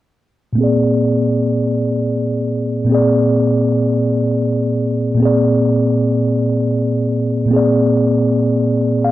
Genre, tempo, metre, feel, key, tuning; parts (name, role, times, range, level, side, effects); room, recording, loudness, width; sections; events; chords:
R&B; 52 BPM (dotted quarters); 6/8; straight; A4 = 439 Hz
mellow tine electric piano; solo; 0.5-9.1 s; Bb2 to F5; -13 LUFS; equal; medium stereo tremolo, low-pass filter
moderate studio reverb, RT60 0.9 s; dark, warm production; -13 LUFS; side -15 dB against mid
0.6-5.2 A section; 5.2-9.1 B section
filter sweep on tine electric piano 0.6-5.2; tine electric piano fill 8.7-9.1
0.6 Bb9